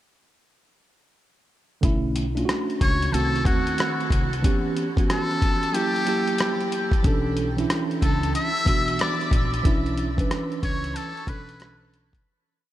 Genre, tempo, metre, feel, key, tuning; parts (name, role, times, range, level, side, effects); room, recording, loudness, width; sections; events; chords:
hip hop, jazz-hop; 92 BPM; 4/4; swing 66% on 16ths; B minor; A4 = 441 Hz
mellow tine electric piano; accompaniment; 1.8-12.1 s; D3 to B4; -26 LUFS; right 2 dB; medium stereo tremolo
upright bass; bass; 1.8-12.2 s; A#1 to Eb2; -28 LUFS; equal
dusty soul sampler-style drum kit; drums; 1.8-12.3 s; hi-hat, kick drum, rim click; -25 LUFS; equal
trumpet with metal mute; melody; 2.8-11.9 s; Gb4 to E5; -28 LUFS; left 1 dB; diffuse ambient delay
breathy concert flute; second line; 2.8-11.9 s; Gb5 to E6; -33 LUFS; left 4 dB
moderate huge ambient reverb, RT60 7.8 s; dreamy mix soaked in reverb; -21 LUFS; side -13 dB against mid
1.8-12.3 A section
fade-out 9.7-12.3
1.8 Bm11; 3.1 Cdim7; 4.4 C#m7b5; 5.7 F#7b9; 7.0 Bm11